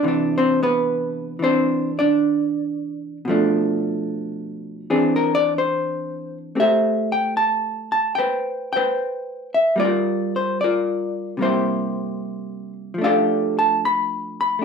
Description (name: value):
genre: jazz ballad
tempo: 74 BPM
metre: 4/4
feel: swing 69% on 8ths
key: C major, A minor from 6.5 s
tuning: A4 = 440 Hz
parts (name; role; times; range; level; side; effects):
- vintage hollow-body jazz guitar; solo; 0.0-14.6 s; B2 to B5; -19 LUFS; equal; none
room: moderate studio reverb, RT60 0.6 s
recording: minimal, uncompressed stereo recording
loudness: -19 LUFS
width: side -6 dB against mid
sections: 0.0-6.5 A section; 6.5-14.6 B section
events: none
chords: 0.0 Cmaj9; 3.3 Bm7b5; 4.9 Eaug7; 6.5 Am9; 9.8 Gm7; 11.4 C7; 13.0 F69